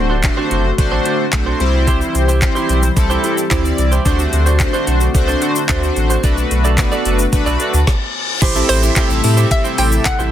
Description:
dance-pop; 110 BPM; 4/4; straight; A4 = 441 Hz
chorused polysynth; accompaniment; 0.0-10.3 s; G3 to E5; -19 LUFS; left 1 dB; sidechain pumping
airy breathy pad; sustained chords; 0.0-10.3 s; C3 to G4; -25 LUFS; left 2 dB; chorus, sidechain pumping
warm sub bass; bass; 0.0-10.3 s; D1 to A2; -16 LUFS; equal; sidechain pumping
clean electric guitar; riff; 0.1-10.3 s; D4 to D5; -22 LUFS; right 5 dB; lush chorus
smooth R&B drum kit; drums; 0.2-10.3 s; crash cymbal, handclaps, hi-hat, kick drum, shaker, snare drum; -18 LUFS; equal; soft clipping on snare
reverse cymbal and downlifter; sound effects; 7.6-10.3 s; -23 LUFS; left 1 dB
hollow square pluck; melody; 8.7-10.2 s; C5 to G5; -20 LUFS; equal; chorus
light reverb; dense, heavily limited modern master; -13 LUFS; side -11 dB against mid
0.0-8.4 A section; 8.4-10.3 B section
reverse cymbal 7.6-8.4; stop 7.9-8.4
0.0 D7; 1.6 C; 4.1 D7; 6.2 Bm7; 8.4 Am7

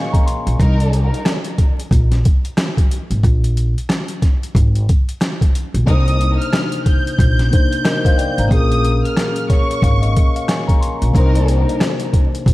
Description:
hip hop, boom-bap hip-hop; 91 BPM; 4/4; swing 60% on 16ths; C phrygian; A4 = 441 Hz
warm studio violin section; melody; 0.0-0.1, 5.9-10.6 s; Db6 to G6; -24 LUFS; right 1 dB; high-pass filter, low-pass filter, analog delay
mellow tine electric piano; accompaniment; 0.0-0.6, 5.8-12.5 s; Bb2 to C6; -21 LUFS; left 2 dB; cassette tape, high-pass filter, low-pass filter
boom bap sampler-style drum kit; drums; 0.1-12.5 s; hi-hat, kick drum, rim click, snare drum; -15 LUFS; equal
upright bass; bass; 0.5-12.5 s; Ab1 to C2; -16 LUFS; equal
warm studio string section; stabs; 0.6-1.0, 5.9-6.2, 11.2-11.6 s; G3 to Bb4; -26 LUFS; left 1 dB; high-pass filter, low-pass filter, analog delay
light reverb, small room ambience; vinyl crackle; -13 LUFS; side -18 dB against mid
0.0-12.5 A section
0.0 Bbm7; 0.6 Cm7; 3.2 Absus2; 5.9 Cm9; 8.5 Bbm7; 11.1 Cm9

